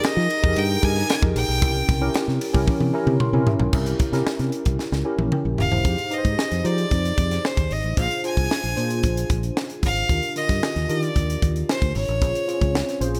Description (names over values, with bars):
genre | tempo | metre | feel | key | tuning
polished 1980s jazz-funk pop | 113 BPM | 4/4 | straight | unclear | A4 = 441 Hz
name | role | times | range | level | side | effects
bright fiddle | melody | 0.0-2.1, 5.6-13.0 s | C5 to Ab5 | -28 LUFS | equal | tape echo
tine electric piano | accompaniment | 0.0-13.2 s | D3 to C6 | -29 LUFS | equal | analog chorus
fingered electric bass | bass | 0.0-13.2 s | Eb1 to F3 | -26 LUFS | equal | none
crisp fusion drum kit | drums | 0.0-13.2 s | crash cymbal, hi-hat, kick drum, ride cymbal, snare drum, toms | -26 LUFS | equal | none
room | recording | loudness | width
small room reverb | none | -22 LUFS | mono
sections
0.0-3.7 A section; 3.7-5.9 B section; 5.9-13.2 C section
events
drum fill 2.7-3.7, 4.8-5.9; tine electric piano fill 2.9-3.7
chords
0.0 Fm11; 1.6 C7b9; 5.9 Fm9; 8.0 Bb7; 10.1 Ebmaj9; 12.2 Bbm7